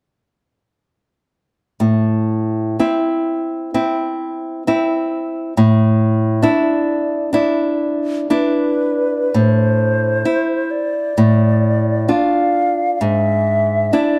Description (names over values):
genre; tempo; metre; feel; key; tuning
romantic duo for flute and classical guitar; 64 BPM; 4/4; uneven beats, rubato; A minor; A4 = 440 Hz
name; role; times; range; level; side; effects
nylon-string guitar; accompaniment; 1.8-14.2 s; G#2 to F4; -18 LUFS; equal; none
hollow concert flute; melody; 8.3-14.2 s; B4 to F5; -21 LUFS; equal; none
room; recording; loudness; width
wet spring reverb, RT60 1.6 s, studio reverb; none; -17 LUFS; mono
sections
1.8-9.4 A section; 9.4-14.2 B section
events
none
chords
1.8 Am; 5.6 E5/A; 9.4 Am; 11.2 Dm/A; 13.0 E7/G#